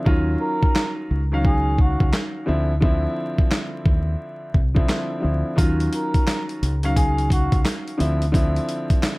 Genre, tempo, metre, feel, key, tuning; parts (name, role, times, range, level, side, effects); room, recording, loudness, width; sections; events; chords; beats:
hip hop, boom-bap hip-hop; 87 BPM; 4/4; swing 62% on 16ths; A4 = 440 Hz
warm upright piano; accompaniment; 0.0-9.2 s; D3 to F5; -25 LUFS; equal; cassette tape, high-pass filter, low-pass filter
deep dub fingered electric bass; bass; 0.1-8.6 s; C2 to Eb2; -22 LUFS; equal
boom bap sampler-style drum kit; drums; 0.1-9.2 s; handclaps, hi-hat, kick drum, snare drum; -20 LUFS; equal
trumpet with cup mute; melody; 0.4-7.6 s; Gb4 to Bb4; -28 LUFS; equal; high-pass filter, low-pass filter, tape echo
light reverb; vinyl crackle; -18 LUFS; side -24 dB against mid
0.0-9.2 A section
break 0.0-5.6
0.1 Ebm9; 2.5 Dm9; 5.6 Ebm9; 8.0 Dm9
| 0.07 0.76 1.44 2.13 | 2.82 3.51 4.20 4.89 | 5.58 6.27 6.96 7.65 | 8.34 9.03